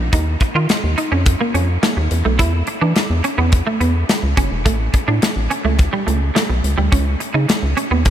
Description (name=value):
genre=early-eighties boogie funk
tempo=106 BPM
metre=4/4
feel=straight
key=unclear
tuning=A4 = 441 Hz
part: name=rubbery square bass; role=bass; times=0.0-8.1 s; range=E1 to E3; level=-17 LUFS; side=equal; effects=none
part: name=semi-hollow electric guitar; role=riff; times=0.1-8.1 s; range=G3 to F4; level=-20 LUFS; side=right 3 dB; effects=ensemble chorus
part: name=modern studio drum kit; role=drums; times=0.1-8.1 s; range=hi-hat, kick drum, snare drum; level=-19 LUFS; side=left 1 dB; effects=none
room=light reverb, small room reverb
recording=none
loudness=-15 LUFS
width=side -10 dB against mid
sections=0.0-8.1 A section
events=none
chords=0.0 Ebsus2; 2.1 E5; 4.7 A7(no3); 6.9 Dbsus2